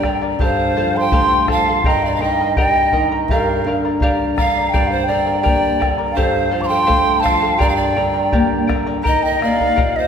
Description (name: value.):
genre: andean folk, Andean ensemble.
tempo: 83 BPM.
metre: 2/4.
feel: straight.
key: unclear.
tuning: A4 = 440 Hz.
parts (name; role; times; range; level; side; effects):
breathy mellow large quena; melody; 0.0-10.1 s; Eb5 to D6; -19 LUFS; equal; none.
breathy bright pan flute; second line; 0.0-10.1 s; Bb4 to Bb5; -21 LUFS; right 3 dB; none.
charango; accompaniment; 0.0-10.1 s; G4 to Bb5; -22 LUFS; left 1 dB; none.
flamenco guitar; accompaniment; 0.0-10.1 s; G2 to G4; -22 LUFS; left 1 dB; none.
bombo; percussion; 0.0-9.9 s; none; -22 LUFS; equal; none.
room: wet concert hall reverb, RT60 2.5 s.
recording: recorded in a church or concert hall.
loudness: -14 LUFS.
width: side -7 dB against mid.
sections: 0.0-9.1 A section; 9.1-10.1 B section.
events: none.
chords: 0.4 F/G; 1.8 Eb/G; 3.3 Bb/G; 4.7 Gm; 6.2 F/G; 7.6 Gm; 9.1 Eb.